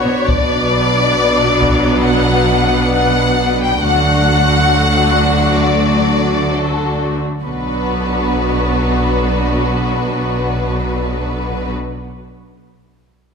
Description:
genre	cinematic, epic orchestral film score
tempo	67 BPM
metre	4/4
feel	straight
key	B minor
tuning	A4 = 440 Hz
part	warm symphonic violin section	melody	0.0-11.7 s	A4 to G5	-17 LUFS	left 3 dB	none
part	warm symphonic violin section	second line	0.0-11.7 s	D4 to B4	-20 LUFS	left 2 dB	none
part	rich studio viola section	accompaniment	0.0-11.7 s	F#3 to B3	-21 LUFS	left 1 dB	none
part	warm studio cello section	bass	0.1-11.7 s	B2 to D3	-20 LUFS	right 3 dB	none
part	rich symphonic double bass section	bass	0.3-11.7 s	B1 to D2	-20 LUFS	right 2 dB	none
part	taiko ensemble	drums	0.3-2.0 s	none	-21 LUFS	equal	none
room	moderate scoring stage reverb, RT60 2.0 s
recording	none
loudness	-12 LUFS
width	side -5 dB against mid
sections	0.3-7.4 A section; 7.4-11.0 B section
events	none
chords	0.3 Bm; 3.8 D; 7.4 Bm

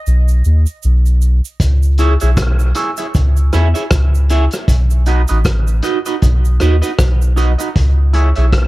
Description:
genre	dub reggae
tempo	78 BPM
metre	4/4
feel	swing 57% on 16ths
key	C# minor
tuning	A4 = 439 Hz
part	soft dub sub bass	bass	0.1-8.7 s	A1 to E2	-11 LUFS	equal	none
part	cabasa	percussion	0.1-7.8 s	none	-32 LUFS	right 10 dB	none
part	vintage drum kit	drums	1.6-8.7 s	hi-hat, kick drum, rim click	-18 LUFS	equal	none
part	electric guitar at the edge of break-up	accompaniment	2.0-8.5 s	D#4 to E5	-20 LUFS	right 3 dB	phaser, dub echo
room	studio reverb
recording	echo-heavy mix, faint mains hum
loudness	-11 LUFS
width	side -18 dB against mid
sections	0.0-1.6 A section; 1.6-8.7 B section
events	break 0.0-1.6; part muted 7.8-8.7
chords	0.0 B; 1.6 C#m; 4.7 B; 7.8 C#m

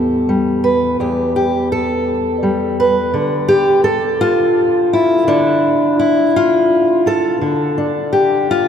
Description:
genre	folk, solo fingerstyle acoustic guitar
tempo	56 BPM (dotted quarters)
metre	6/8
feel	straight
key	D dorian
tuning	A4 = 440 Hz
part	fingerpicked steel-string acoustic guitar	solo	0.0-8.7 s	E2 to B4	-12 LUFS	left 1 dB	none
room	wet cathedral reverb, RT60 5.4 s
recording	recorded in a church or concert hall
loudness	-12 LUFS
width	side -8 dB against mid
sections	0.0-7.4 A section; 7.4-8.7 B section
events	none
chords	0.0 Em; 3.1 Dm; 7.4 N.C.

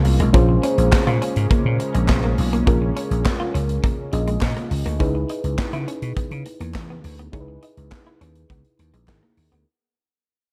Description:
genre	early-eighties boogie funk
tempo	103 BPM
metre	4/4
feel	straight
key	Bb minor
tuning	A4 = 441 Hz
part	mellow FM electric piano	accompaniment	0.0-9.7 s	Db4 to Eb5	-28 LUFS	equal	chorus
part	lush unison pad	sustained chords	0.0-5.0 s	Db3 to F4	-32 LUFS	equal	chorus, phaser
part	modern studio drum kit	drums	0.0-9.7 s	handclaps, hi-hat, kick drum, snare drum	-24 LUFS	equal	gated reverb
part	clean electric guitar	riff	0.1-9.6 s	Ab3 to F4	-31 LUFS	equal	lush chorus
part	vintage slap bass	bass	0.1-9.6 s	Ab1 to Db3	-23 LUFS	equal	none
part	group handclap	percussion	0.9-9.2 s	none	-37 LUFS	equal	none
room	studio reverb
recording	none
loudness	-20 LUFS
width	mono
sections	0.3-9.7 A section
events	fade-out 0.3-9.7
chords	0.3 Bbm9; 5.0 Dbm9

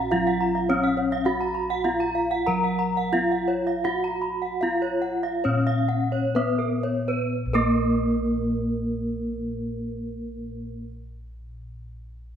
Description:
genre	Balinese gamelan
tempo	58-105 BPM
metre	4/4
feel	straight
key	Bb pelog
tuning	A4 = 440 Hz
part	gamelan-type bronze metallophone	melody	0.0-10.8 s	Bb3 to Bb4	-25 LUFS	equal	none
part	gamelan-type bronze metallophone	arpeggios	0.0-10.8 s	Bb4 to Bb5	-30 LUFS	right 5 dB	none
part	gamelan-type bossed gongs	bass	0.0-10.7 s	Bb1 to Gb4-20c	-30 LUFS	equal	none
part	gamelan-type bronze metallophone	arpeggios	0.1-10.8 s	Bb4 to Cb6+20c	-31 LUFS	left 4 dB	none
room	wet large studio reverb, RT60 1.2 s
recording	band playing live in one room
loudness	-22 LUFS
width	side -8 dB against mid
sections	0.0-7.3 A section; 7.3-11.5 B section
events	slowing down 1.3-7.3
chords	none

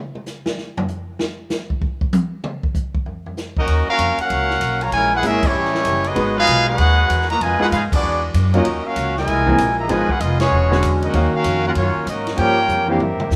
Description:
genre	jazz, big band swing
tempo	193 BPM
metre	4/4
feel	swing 64% on 8ths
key	Eb minor from 3.7 s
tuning	A4 = 439 Hz
part	swinging big-band drum kit	drums	0.2-13.4 s	crash cymbal, hi-hat, kick drum, ride cymbal, snare drum, toms	-27 LUFS	equal	none
part	warm trumpet section	melody	3.6-13.4 s	A3 to Bb5	-21 LUFS	equal	none
part	bright trombone section	second line	3.6-13.4 s	Bb2 to G4	-30 LUFS	equal	none
part	clear saxophone section	sustained chords	3.7-13.4 s	C3 to D#5	-35 LUFS	equal	none
part	upright bass	bass	3.7-13.4 s	E1 to Ab2	-23 LUFS	equal	none
part	clear grand piano	accompaniment	5.2-13.0 s	D3 to F5	-23 LUFS	equal	none
room	light reverb, studio ambience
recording	rough home demo mix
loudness	-19 LUFS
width	mono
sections	0.0-3.7 A section; 3.7-13.4 B section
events	drum solo 0.0-3.7; band accent 5.4, 7.9, 10.4; drum fill 12.7-13.3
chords	0.0 N.C.; 3.1 D#5; 3.7 Ebm9; 4.9 Bbm7b5; 5.5 A7#11; 6.2 Abm7; 7.4 Fm7b5; 8.0 E9; 8.6 Ebm9; 9.3 C7alt; 9.9 Fm7b5; 10.5 E13; 11.1 Ebm9; 12.4 Gm7b5

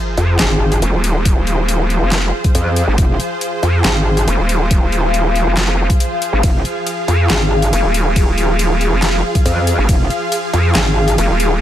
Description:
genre	heavy wobble dubstep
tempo	139 BPM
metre	4/4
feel	half-time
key	F minor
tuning	A4 = 436 Hz
part	supersaw pad	sustained chords	0.0-11.6 s	F3 to F5	-22 LUFS	right 2 dB	sidechain pumping
part	sub drop	sound effects	0.0-1.3 s	none	-27 LUFS	equal	none
part	granular cloud pad	texture	0.0-11.6 s	Ab4 to F5	-23 LUFS	left 3 dB	built-in reverb, sidechain pumping
part	vowel-sweep wobble bass	bass	0.2-11.6 s	Eb1 to F2	-15 LUFS	equal	chorus, overdrive
part	dubstep drum kit	drums	0.2-11.5 s	handclaps, hi-hat, ride cymbal, snare drum	-21 LUFS	equal	overdrive, studio reverb
part	metallic wobble bass	bass	0.4-11.2 s	F1 to F2	-15 LUFS	equal	chorus, overdrive
part	electronic kick drum	drums	1.3-10.0 s	none	-14 LUFS	equal	overdrive, studio reverb
room	digital ambience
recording	none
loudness	-12 LUFS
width	side -12 dB against mid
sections	0.0-11.6 A section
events	impact 0.0-1.3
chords	0.0 Fm

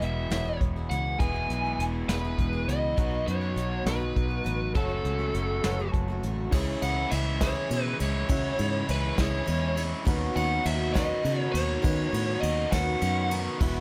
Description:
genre	folk rock and heartland rock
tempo	68 BPM (dotted quarters)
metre	6/8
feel	straight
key	unclear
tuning	A4 = 435 Hz
part	biting lead guitar	melody	0.0-13.3 s	A4 to G#5	-34 LUFS	equal	overdrive
part	bright upright piano	accompaniment	0.0-13.8 s	C#4 to A5	-42 LUFS	equal	none
part	picked twelve-string acoustic guitar	accompaniment	0.0-13.8 s	F#2 to G#4	-39 LUFS	equal	none
part	crunchy overdriven guitar	riff	0.0-13.8 s	E2 to G#4	-36 LUFS	equal	none
part	fingered electric bass	bass	0.0-13.8 s	E1 to D#3	-32 LUFS	equal	none
part	soft brush drum kit	drums	0.0-13.8 s	crash cymbal, hi-hat, kick drum, ride cymbal, snare drum	-33 LUFS	equal	none
room	light reverb, studio ambience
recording	none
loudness	-28 LUFS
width	mono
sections	0.0-6.5 A section; 6.5-13.8 B section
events	upright piano fill 5.6-6.5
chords	0.0 E; 3.0 B; 4.8 F#m; 6.5 C#m; 10.1 Badd9/D#

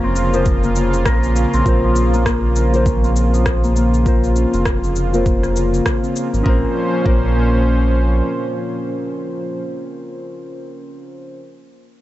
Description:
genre	organic downtempo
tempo	100 BPM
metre	4/4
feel	swing 59% on 16ths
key	Bb minor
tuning	A4 = 443 Hz
part	muted felt-like synth keys	accompaniment	0.0-11.4 s	Db4 to C5	-23 LUFS	left 1 dB	chorus, sidechain pumping, low-pass filter, digital delay
part	warm analog pad	sustained chords	0.0-9.6 s	Bb2 to C5	-23 LUFS	right 2 dB	chorus, tremolo, sidechain pumping
part	Celtic harp	arpeggios	0.0-10.3 s	F3 to Bb4	-23 LUFS	left 3 dB	low-pass filter, digital delay
part	round analog bass	bass	0.0-8.2 s	F1 to Bb1	-17 LUFS	equal	sidechain pumping
part	electronic cabasa and rim click	drums	0.2-6.4 s	none	-26 LUFS	left 1 dB	overdrive
part	electronic kick drum	drums	0.5-7.3 s	none	-19 LUFS	equal	overdrive
room	little or no reverb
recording	nothing above 7.9 kHz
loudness	-14 LUFS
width	side -15 dB against mid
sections	0.0-6.5 A section; 6.5-8.9 B section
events	filter sweep on synth keys 0.0-6.5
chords	0.0 Bbmadd9

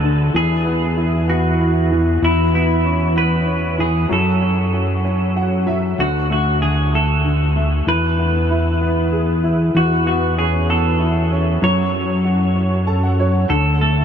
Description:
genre	six-eight pop ballad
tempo	64 BPM (dotted quarters)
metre	6/8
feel	straight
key	unclear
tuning	A4 = 440 Hz
part	clean electric guitar	melody	0.0-14.0 s	E4 to C#5	-21 LUFS	equal	wide subtle chorus
part	clear grand piano	accompaniment	0.0-14.0 s	D3 to A5	-21 LUFS	equal	ensemble chorus
part	fat analog bass	bass	0.0-14.0 s	D2 to F#2	-18 LUFS	equal	none
room	moderate huge ambient reverb, RT60 7.3 s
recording	dreamy mix soaked in reverb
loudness	-15 LUFS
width	side -8 dB against mid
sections	0.0-14.0 A section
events	grand piano fill 5.0-6.0, 12.6-13.5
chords	0.3 Eadd9; 2.2 E5; 4.1 F#m; 6.0 D5; 7.9 E; 9.7 Aadd9/E; 11.6 F#m; 13.5 D5

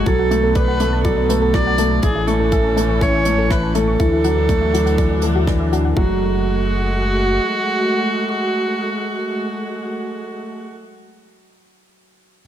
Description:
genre	piano and strings electronica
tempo	122 BPM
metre	4/4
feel	straight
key	F# minor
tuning	A4 = 445 Hz
part	warm viola	melody	0.0-10.7 s	F#4 to D5	-21 LUFS	right 1 dB	none
part	dark studio string section	sustained chords	0.0-10.7 s	D3 to F#4	-24 LUFS	right 1 dB	sidechain pumping
part	soft round pluck	arpeggios	0.0-6.2 s	E4 to C#6	-26 LUFS	left 3 dB	chorus, sidechain pumping, ping-pong delay
part	felt-muted upright piano	riff	0.0-12.4 s	E3 to D4	-21 LUFS	left 1 dB	none
part	round analog bass	bass	0.0-7.4 s	F#1 to D2	-21 LUFS	equal	sidechain pumping
part	electronic kick drum	drums	0.1-6.1 s	none	-19 LUFS	equal	none
part	jazz brush drum kit	drums	0.1-5.8 s	hi-hat, rim click	-32 LUFS	right 4 dB	none
room	light reverb, small room ambience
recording	none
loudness	-15 LUFS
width	side -10 dB against mid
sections	0.0-6.0 A section; 6.0-9.9 B section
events	drop 0.0-6.0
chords	0.1 Bm7; 2.0 A; 4.0 Dadd9; 6.0 F#madd9

